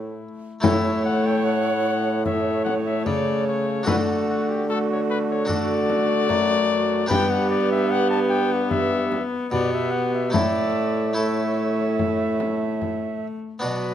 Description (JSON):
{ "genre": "classical, renaissance-style consort dance", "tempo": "74 BPM", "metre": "4/4", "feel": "straight", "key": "unclear", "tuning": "A4 = 440 Hz", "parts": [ { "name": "mellow cornet", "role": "melody", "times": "0.0-13.9 s", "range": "E4 to A5", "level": "-27 LUFS", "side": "left 6 dB", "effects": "none" }, { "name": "harpsichord", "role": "accompaniment", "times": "0.0-13.9 s", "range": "F#2 to B4", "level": "-30 LUFS", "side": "left 1 dB", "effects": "none" }, { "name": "warm viola", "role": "accompaniment", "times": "0.0-13.9 s", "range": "F#3 to B3", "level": "-26 LUFS", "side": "left 4 dB", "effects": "none" }, { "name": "warm bassoon", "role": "bass", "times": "0.0-13.9 s", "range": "F#2 to D3", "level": "-25 LUFS", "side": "right 3 dB", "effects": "none" }, { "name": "alto recorder", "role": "second line", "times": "0.6-13.9 s", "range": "F#4 to E5", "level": "-28 LUFS", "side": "right 8 dB", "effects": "none" }, { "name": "frame drum", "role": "percussion", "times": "0.6-13.2 s", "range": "none", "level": "-26 LUFS", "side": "left 4 dB", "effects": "none" } ], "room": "light reverb", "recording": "close, detailed microphones", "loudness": "-20 LUFS", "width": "side -10 dB against mid", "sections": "0.6-13.6 A section", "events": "none", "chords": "0.0 A5; 0.6 A; 3.9 D; 7.1 G; 10.3 A", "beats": "| 0.64 1.45 2.26 3.07 | 3.88 4.69 5.50 6.30 | 7.10 7.91 8.72 9.53 | 10.34 11.17 11.99 12.81 | 13.63" }